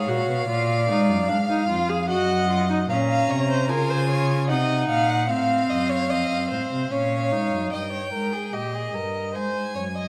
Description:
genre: classical, baroque-style fugue for string quartet.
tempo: 74 BPM.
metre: 3/4.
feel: straight.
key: Eb minor.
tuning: A4 = 438 Hz.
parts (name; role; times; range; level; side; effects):
rich violin; melody; 0.0-10.1 s; Eb5 to Bb5; -31 LUFS; equal; none.
dark violin; second line; 0.0-10.1 s; G4 to Gb5; -29 LUFS; equal; none.
rich viola; accompaniment; 0.0-7.7 s; C4 to Ab4; -29 LUFS; equal; none.
warm cello; bass; 0.0-10.1 s; F2 to Db3; -28 LUFS; equal; none.
room: moderate recital hall reverb, RT60 1.6 s.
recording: none.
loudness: -23 LUFS.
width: mono.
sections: 0.0-7.7 A section; 7.7-10.1 B section.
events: none.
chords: 0.5 Bb7; 2.1 Ebm/Gb; 2.9 Bbm; 4.5 Cdim; 5.3 F7; 6.9 Bbm; 7.7 Eb/G; 9.4 Ab.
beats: | 0.48 1.28 2.09 | 2.89 3.69 4.50 | 5.29 6.10 6.92 | 7.73 8.54 9.35.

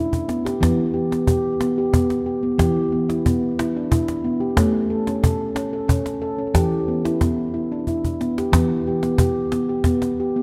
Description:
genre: world meditative, meditative tuned percussion.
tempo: 91 BPM.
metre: 3/4.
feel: straight.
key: E dorian.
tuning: A4 = 440 Hz.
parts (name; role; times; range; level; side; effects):
handpan; arpeggios; 0.0-10.4 s; E3 to A4; -22 LUFS; equal; delay.
cajon; percussion; 0.1-10.2 s; none; -24 LUFS; equal; none.
room: wet concert hall reverb, RT60 2.2 s.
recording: dark, warm production, faint mains hum.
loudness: -21 LUFS.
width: mono.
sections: 0.0-8.5 A section; 8.5-10.4 B section.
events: drum fill 0.0-0.6, 7.9-8.5.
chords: 0.0 N.C.; 0.6 Em; 4.6 A; 6.6 Em.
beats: | 0.61 1.27 1.94 | 2.60 3.25 3.92 | 4.58 5.24 5.90 | 6.56 7.22 7.88 | 8.54 9.20 9.86.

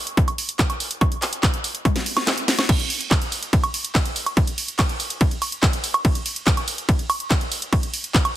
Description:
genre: trance.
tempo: 143 BPM.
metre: 4/4.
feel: straight.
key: none.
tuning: none.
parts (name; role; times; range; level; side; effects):
techno drum kit; drums; 0.1-8.3 s; crash cymbal, handclaps, hi-hat, ride cymbal, snare drum, toms, woodblock; -23 LUFS; right 1 dB; none.
electronic kick drum; drums; 0.2-8.2 s; none; -19 LUFS; equal; none.
room: light reverb.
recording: dense, heavily limited modern master.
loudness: -19 LUFS.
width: side -13 dB against mid.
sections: 0.0-2.7 A section; 2.7-8.4 A section.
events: drop 0.0-2.7, 2.7-8.4; drum fill 1.9-2.7; kick drops out 2.3-2.7.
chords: none.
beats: 0.17 0.59 | 1.01 1.43 1.85 2.27 | 2.69 3.11 3.53 3.95 | 4.37 4.79 5.21 5.63 | 6.05 6.47 6.89 7.31 | 7.73 8.14.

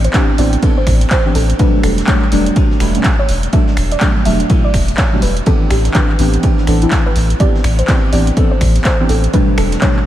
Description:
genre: deep house.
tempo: 124 BPM.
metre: 4/4.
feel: swing 60% on 16ths.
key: A minor.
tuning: A4 = 439 Hz.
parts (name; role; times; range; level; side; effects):
soft round pluck; melody; 0.0-10.1 s; G4 to E5; -22 LUFS; right 1 dB; wide subtle chorus, analog delay.
warm sub bass; bass; 0.0-9.8 s; E1 to A1; -15 LUFS; equal; sidechain pumping.
punchy analog drum machine; drums; 0.0-10.0 s; finger snaps, handclaps, hi-hat; -21 LUFS; equal; none.
deep mellow chord stab; stabs; 0.1-10.0 s; B2 to A4; -17 LUFS; equal; chorus, sidechain pumping, analog delay.
electronic kick drum; drums; 0.1-9.9 s; none; -14 LUFS; equal; none.
vintage brush drum kit; drums; 0.1-10.0 s; hi-hat, ride cymbal, snare drum; -31 LUFS; right 2 dB; sidechain pumping on cymbals, high-pass filter on cymbals, sidechain pumping on hats, high-pass filter on hats, high-pass filter on snare, high-pass filter on room.
room: moderate cathedral reverb, RT60 6.3 s.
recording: dreamy mix soaked in reverb, vinyl crackle.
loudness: -11 LUFS.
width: side -12 dB against mid.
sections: 0.0-10.1 A section.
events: none.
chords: 0.0 Am11; 1.6 Em11; 5.5 Am11; 9.3 Em11.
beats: 0.14 0.63 1.11 | 1.59 2.08 2.56 3.04 | 3.53 4.01 4.50 4.98 | 5.46 5.95 6.43 6.92 | 7.40 7.88 8.37 8.85 | 9.34 9.82.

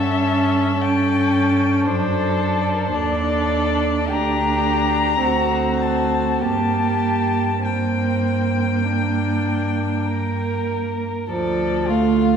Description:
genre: classical, slow romantic movement for string quartet.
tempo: 48-56 BPM.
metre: 4/4.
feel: rubato.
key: G minor.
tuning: A4 = 442 Hz.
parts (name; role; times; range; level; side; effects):
muted violin; melody; 0.0-12.4 s; Bb4 to Bb5; -24 LUFS; left 5 dB; none.
muted violin; second line; 0.0-12.4 s; C4 to Bb4; -26 LUFS; left 2 dB; none.
muted viola; accompaniment; 0.0-12.4 s; F3 to D4; -21 LUFS; right 2 dB; none.
muted cello; bass; 0.0-12.4 s; D2 to G2; -24 LUFS; right 2 dB; none.
room: wet scoring stage reverb, RT60 1.8 s.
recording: recorded in a church or concert hall.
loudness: -18 LUFS.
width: side -7 dB against mid.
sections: 0.0-11.3 A section; 11.3-12.4 B section.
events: none.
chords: 0.0 A7/G; 1.9 D/F#; 4.1 Gm/D; 5.2 D7; 6.4 Gm; 11.3 Dm.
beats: 0.80 | 1.88 2.95 4.10 5.24 | 6.42 7.64 8.86 10.07 | 11.30.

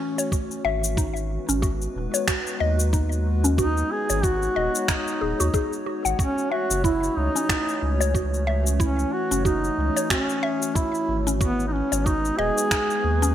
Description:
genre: organic downtempo.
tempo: 92 BPM.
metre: 4/4.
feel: swing 57% on 16ths.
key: F# dorian.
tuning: A4 = 440 Hz.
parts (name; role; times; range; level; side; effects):
mellow duduk; melody; 0.0-13.3 s; B3 to G#4; -26 LUFS; equal; digital delay.
warbly tape-like pad; sustained chords; 0.0-13.3 s; E3 to C#5; -31 LUFS; left 1 dB; chorus, built-in reverb, sidechain pumping.
mallet-like synth pluck; arpeggios; 0.0-13.3 s; C#4 to F#5; -28 LUFS; left 1 dB; chorus, phaser, digital delay.
electronic cabasa and finger snaps; drums; 0.2-13.3 s; none; -27 LUFS; left 1 dB; gated reverb.
electronic kick drum; drums; 0.3-12.9 s; none; -25 LUFS; equal; none.
warm sub bass; bass; 0.6-13.3 s; D#1 to D#2; -25 LUFS; equal; sidechain pumping.
room: moderate plate reverb, RT60 2.8 s.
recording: bright 1980s-style digital production.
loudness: -21 LUFS.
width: side -11 dB against mid.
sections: 0.0-13.3 A section.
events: none.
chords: 0.0 F#m7; 1.0 G#m7; 6.2 F#m7; 11.4 G#m7.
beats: 0.32 | 0.97 1.63 2.28 2.93 | 3.58 4.23 4.89 5.54 | 6.19 6.84 7.50 8.15 | 8.80 9.45 10.10 10.76 | 11.41 12.06 12.71.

